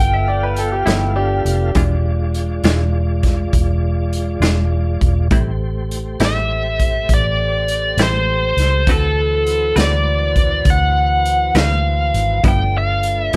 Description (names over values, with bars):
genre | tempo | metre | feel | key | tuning
slow blues | 67 BPM (dotted quarters) | 12/8 | straight | G mixolydian | A4 = 435 Hz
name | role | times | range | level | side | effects
biting lead guitar | melody | 0.0-13.4 s | A4 to G5 | -20 LUFS | equal | overdrive, plate reverb
bright upright piano | second line | 0.0-2.9 s | D4 to G5 | -26 LUFS | equal | analog delay
tonewheel organ | sustained chords | 0.0-13.4 s | E3 to F5 | -30 LUFS | equal | slow rotary speaker, chorus vibrato
vintage muted fingered electric bass | bass | 0.0-13.4 s | E1 to D2 | -21 LUFS | equal | none
raw garage drum kit | drums | 0.6-13.4 s | hi-hat, kick drum, snare drum | -21 LUFS | equal | none
semi-hollow electric guitar | accompaniment | 0.9-13.4 s | G2 to B4 | -23 LUFS | equal | tremolo
room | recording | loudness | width
light reverb | none | -17 LUFS | mono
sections
0.0-13.4 A section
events
none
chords
0.0 G13; 1.8 E7b9; 5.3 Am7; 8.9 D13; 12.4 G13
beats
0.87 | 1.76 2.65 3.54 4.43 | 5.32 6.21 7.10 7.99 | 8.88 9.77 10.66 11.55 | 12.44 13.34